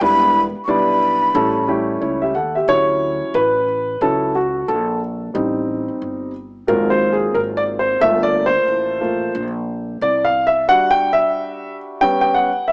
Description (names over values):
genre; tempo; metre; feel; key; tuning
hip hop; 90 BPM; 4/4; swing 61% on 16ths; unclear; A4 = 440 Hz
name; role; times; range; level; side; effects
breathy mellow jazz flute; melody; 0.0-1.7 s; B5 to C#6; -18 LUFS; equal; none
warm upright piano; accompaniment; 0.0-12.7 s; F#3 to G5; -19 LUFS; equal; none
upright bass; bass; 0.0-10.6 s; E1 to Eb2; -29 LUFS; equal; none
room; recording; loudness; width
light reverb, studio reverb; small speaker sound; -18 LUFS; mono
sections
0.0-2.7 A section; 2.7-12.7 B section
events
upright piano solo 2.7-12.7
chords
0.0 Em7; 1.3 A7; 2.7 Dmaj7; 5.3 Am7b5; 6.7 G#13; 8.0 Gm7; 10.7 Em7; 12.0 Gmaj7#11